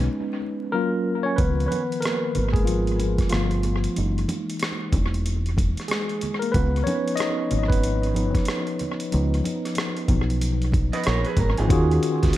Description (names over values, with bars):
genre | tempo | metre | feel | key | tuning
R&B, neo-soul | 93 BPM | 4/4 | swing 62% on 16ths | unclear | A4 = 440 Hz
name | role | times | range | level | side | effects
tine electric piano | accompaniment | 0.0-12.4 s | Eb3 to Eb5 | -25 LUFS | left 1 dB | medium stereo tremolo, tape echo
deep dub fingered electric bass | bass | 0.0-12.3 s | Fb1 to Eb2 | -23 LUFS | equal | none
boom bap sampler-style drum kit | drums | 1.4-12.4 s | hi-hat, kick drum, rim click, snare drum | -26 LUFS | equal | tape echo
congas | percussion | 1.7-11.6 s | none | -35 LUFS | right 2 dB | none
electric guitar through a small old amp | second line | 10.9-11.9 s | F4 to Eb5 | -28 LUFS | right 5 dB | none
room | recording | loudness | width
light reverb | echo-heavy mix, vinyl crackle | -21 LUFS | side -14 dB against mid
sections
0.0-1.4 A section; 1.4-11.7 B section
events
tine electric piano solo 0.0-1.4, 1.4-11.7; break 0.1-1.4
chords
0.0 B69 (rootless); 0.7 Gbmaj7; 1.4 Db9; 3.3 G9; 4.0 Gb13 (rootless); 6.5 Db9; 11.7 Ebm11